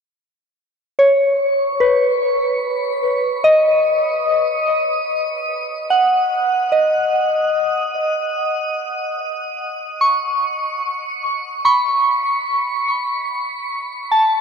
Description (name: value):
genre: ambient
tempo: 73 BPM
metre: 4/4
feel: straight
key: unclear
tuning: A4 = 440 Hz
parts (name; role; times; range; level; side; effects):
- soft synth bell; solo; 1.0-14.4 s; B4 to C#6; -16 LUFS; equal; chorus, diffuse ambient delay
room: wet shimmer reverb, RT60 7.1 s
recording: dark, warm production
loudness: -16 LUFS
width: side -6 dB against mid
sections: 0.0-5.1 A section; 5.1-14.4 B section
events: none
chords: 0.0 N.C.; 1.8 B; 5.1 D#m7; 11.7 Aadd9 (rootless)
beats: 0.16 0.98 | 1.80 2.62 3.44 4.27 | 5.09 5.91 6.73 7.55 | 8.38 9.20 10.02 10.84 | 11.66 12.48 13.31 14.13